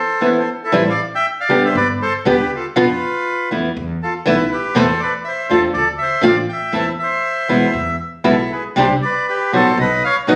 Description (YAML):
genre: tango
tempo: 119 BPM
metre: 4/4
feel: rubato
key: A minor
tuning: A4 = 443 Hz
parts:
  - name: bandoneon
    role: melody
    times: 0.0-10.4 s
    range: E4 to A5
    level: -20 LUFS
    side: equal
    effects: none
  - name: nylon-string guitar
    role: accompaniment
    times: 0.2-10.4 s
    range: B2 to G4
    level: -18 LUFS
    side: equal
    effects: none
  - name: upright bass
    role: bass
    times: 0.7-10.4 s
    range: E1 to F2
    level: -28 LUFS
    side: equal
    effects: none
room: moderate club reverb, RT60 0.6 s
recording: recorded on a phone in the room, studio reverb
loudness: -17 LUFS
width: mono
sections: 0.7-10.4 A section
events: break 0.0-0.7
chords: 0.0 Amadd9; 0.7 A7(no3); 1.8 Gadd9; 2.8 B(b5, no3)/F; 3.8 Esus4; 4.8 Amadd9/E; 5.8 Dm7; 6.7 Am/E; 7.7 E; 8.8 Csus2; 9.8 B